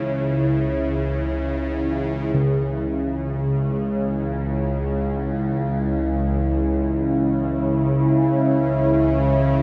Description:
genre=dark ambient drone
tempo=free time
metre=none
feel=none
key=C# minor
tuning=A4 = 435 Hz
part: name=deep dark ambient pad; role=sustained chords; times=0.0-9.6 s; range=E4 to C#5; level=-26 LUFS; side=equal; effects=chorus, built-in reverb
part: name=gamelan-type bossed gongs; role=arpeggios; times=0.0-7.8 s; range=C#3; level=-31 LUFS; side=equal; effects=diffuse ambient delay
part: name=bowed-like drone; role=drone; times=0.0-9.6 s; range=C#2 to C#3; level=-24 LUFS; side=equal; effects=built-in reverb, phaser
room=wet cathedral reverb, RT60 6.3 s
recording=in a vast, echoing space, cassette tape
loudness=-22 LUFS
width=mono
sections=0.0-2.4 A section; 2.4-9.6 B section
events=none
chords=0.0 C#m

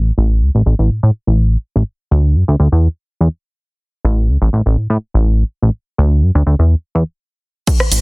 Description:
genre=filtered disco house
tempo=124 BPM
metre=4/4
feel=straight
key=A major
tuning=A4 = 440 Hz
part: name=plucky analog bass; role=bass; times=0.0-8.0 s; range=A1 to A2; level=-11 LUFS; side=equal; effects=sidechain pumping, low-pass filter
part: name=electronic kick drum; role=drums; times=7.7-7.8 s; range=none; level=-14 LUFS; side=equal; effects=overdrive
part: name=house drum kit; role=drums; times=7.7-8.0 s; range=crash cymbal, hi-hat, rim click, shaker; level=-16 LUFS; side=right 1 dB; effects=soft clipping on snare
room=little or no reverb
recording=dense, heavily limited modern master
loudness=-12 LUFS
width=side -30 dB against mid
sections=0.0-7.7 A section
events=filter sweep on analog synth bass 0.0-7.7; stop 7.2-7.7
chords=none

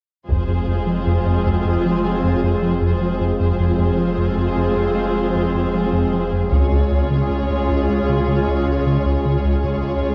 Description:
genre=cinematic, hybrid orchestral and electronic film score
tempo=77 BPM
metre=4/4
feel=straight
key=F minor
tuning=A4 = 440 Hz
part: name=warm symphonic violin section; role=second line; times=0.3-10.1 s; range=Ab4 to Db5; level=-28 LUFS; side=equal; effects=none
part: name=dark symphonic viola section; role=accompaniment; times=0.3-10.1 s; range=Ab3 to F4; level=-29 LUFS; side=equal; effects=none
part: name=airy breathy pad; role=sustained chords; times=0.5-10.1 s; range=Ab3 to Ab4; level=-26 LUFS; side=equal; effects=chorus
part: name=smooth synth bass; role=riff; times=0.3-10.1 s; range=Db2 to F3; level=-23 LUFS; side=equal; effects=none
part: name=dark symphonic cello section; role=bass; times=0.3-10.1 s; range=Db2 to F2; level=-29 LUFS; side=equal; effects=none
part: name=pure sine sub bass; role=bass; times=0.3-10.1 s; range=F1 to Db2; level=-28 LUFS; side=equal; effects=none
part: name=taiko ensemble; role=drums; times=0.3-1.8, 6.5-8.1 s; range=none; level=-27 LUFS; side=equal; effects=none
room=moderate scoring stage reverb, RT60 2.0 s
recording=worn, warbling old tape, cassette tape, warbly pitch drift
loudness=-19 LUFS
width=mono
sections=0.3-10.1 A section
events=build-up 0.3-10.1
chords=0.3 Fm; 6.5 Db

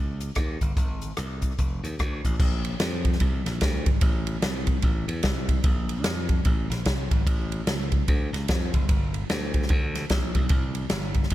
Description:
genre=uptempo gospel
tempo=148 BPM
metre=4/4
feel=swing 62% on 8ths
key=unclear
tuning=A4 = 439 Hz
part: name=glassy slap bass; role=bass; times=0.0-11.3 s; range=F1 to F2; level=-29 LUFS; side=equal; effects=none
part: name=swinging big-band drum kit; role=drums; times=0.2-11.3 s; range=crash cymbal, hi-hat, kick drum, ride cymbal, rim click, snare drum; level=-24 LUFS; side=equal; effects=none
room=little or no reverb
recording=none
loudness=-23 LUFS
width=side -14 dB against mid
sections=0.0-2.4 A section; 2.4-11.3 B section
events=none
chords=none

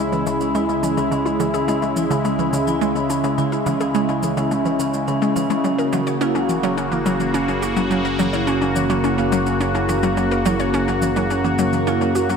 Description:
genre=ambient, sequencer-driven space music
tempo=106 BPM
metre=4/4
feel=straight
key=unclear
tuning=A4 = 440 Hz
part: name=sweeping resonant pad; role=sustained chords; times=0.0-12.4 s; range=C#3 to F#4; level=-21 LUFS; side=equal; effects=chorus, shimmer reverb
part: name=hollow square pluck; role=riff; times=0.0-12.4 s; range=C#3 to C#5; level=-23 LUFS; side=equal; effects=chorus, ping-pong delay, shimmer reverb
part: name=fat analog bass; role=bass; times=0.0-12.4 s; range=F#1 to C#2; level=-31 LUFS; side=equal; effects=none
part: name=vibraphone with soft mallets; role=arpeggios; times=0.1-12.4 s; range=C#4 to E4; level=-24 LUFS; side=left 1 dB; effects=auto-pan, low-pass filter, ping-pong delay, shimmer reverb
part: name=electronic shaker and toms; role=percussion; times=0.1-12.4 s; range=none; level=-30 LUFS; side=equal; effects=ping-pong delay
room=wet echo chamber reverb, RT60 2.1 s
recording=echo-heavy mix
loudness=-17 LUFS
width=side -6 dB against mid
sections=0.0-12.4 A section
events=fade-in on analog synth bass 0.0-12.4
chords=0.0 C#m; 5.6 F#

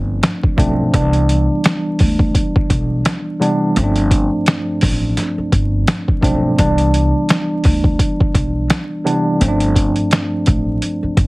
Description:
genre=hip hop, boom-bap hip-hop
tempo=85 BPM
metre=4/4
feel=swing 58% on 16ths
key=C major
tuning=A4 = 445 Hz
part: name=tine electric piano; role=accompaniment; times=0.0-11.3 s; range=C2 to D4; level=-18 LUFS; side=equal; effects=medium stereo tremolo, cassette tape, high-pass filter, low-pass filter
part: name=upright bass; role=bass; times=0.0-11.3 s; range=G1 to D2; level=-18 LUFS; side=equal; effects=none
part: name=boom bap sampler-style drum kit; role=drums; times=0.2-11.3 s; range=hi-hat, kick drum, snare drum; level=-16 LUFS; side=equal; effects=overdrive
room=light reverb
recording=heavily compressed radio sound, vinyl crackle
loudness=-13 LUFS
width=side -22 dB against mid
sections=0.0-11.3 A section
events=none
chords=0.0 G9sus4; 0.9 Cmaj9; 3.8 G9sus4; 6.6 Cmaj9; 9.4 G9sus4

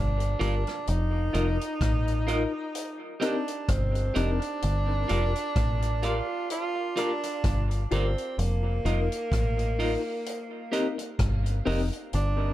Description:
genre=dub reggae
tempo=64 BPM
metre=4/4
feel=swing 56% on 16ths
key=unclear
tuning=A4 = 440 Hz
part: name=warm tenor saxophone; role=melody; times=0.0-12.5 s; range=Bb3 to F4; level=-32 LUFS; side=right 1 dB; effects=dub echo
part: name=deep dub fingered electric bass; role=bass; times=0.0-12.5 s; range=F1 to A1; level=-26 LUFS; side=equal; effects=none
part: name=vintage drum kit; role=drums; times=0.2-12.4 s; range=hi-hat, kick drum, rim click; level=-33 LUFS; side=equal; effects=none
part: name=semi-hollow electric guitar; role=accompaniment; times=0.4-11.8 s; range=F4 to Eb5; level=-35 LUFS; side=right 3 dB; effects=dub echo
part: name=reed electric piano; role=stabs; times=0.4-11.9 s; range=C4 to Bb4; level=-35 LUFS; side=left 5 dB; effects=fast tremolo, dub echo
room=small room ambience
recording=dark, warm production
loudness=-25 LUFS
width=side -14 dB against mid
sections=0.0-12.5 A section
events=none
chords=0.0 Gm7; 0.9 F7sus4; 2.7 Cm7; 4.6 Gm7; 8.4 F7sus4; 10.2 Cm7

